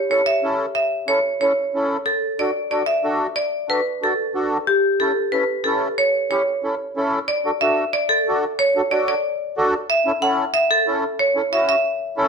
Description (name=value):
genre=latin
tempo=184 BPM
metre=4/4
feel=straight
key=D major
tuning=A4 = 444 Hz
part: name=marimba with hard mallets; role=melody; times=0.0-12.3 s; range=G4 to F#5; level=-19 LUFS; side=equal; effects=none
part: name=accordion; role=accompaniment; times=0.1-12.3 s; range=C#4 to A4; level=-23 LUFS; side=equal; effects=light tremolo tuning
room=wet studio reverb, RT60 0.8 s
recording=dark, warm production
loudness=-18 LUFS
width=side -5 dB against mid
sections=0.0-7.3 A section; 7.3-12.3 B section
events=none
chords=0.0 A; 2.1 D; 4.7 A; 7.3 D; 9.9 A